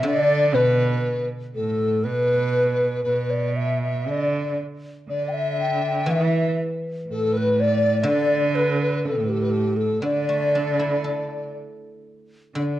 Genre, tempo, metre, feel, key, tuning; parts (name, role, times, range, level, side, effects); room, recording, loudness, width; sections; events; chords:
chinese traditional, Chinese chamber ensemble; 60 BPM; 2/4; rubato; D zhi mode; A4 = 436 Hz
mellow hollow xiao; melody; 0.0-12.8 s; G4 to G5; -23 LUFS; equal
mellow hollow large dizi; second line; 0.0-12.8 s; A4 to G5; -27 LUFS; left 4 dB
rich cello; second line; 0.0-12.8 s; A2 to E3; -25 LUFS; right 2 dB
guzheng; accompaniment; 0.0-3.0, 6.1-12.8 s; D3 to A4; -28 LUFS; equal
moderate recital hall reverb, RT60 1.5 s; worn, warbling old tape, cassette tape, warbly pitch drift; -20 LUFS; side -13 dB against mid
0.0-12.1 A section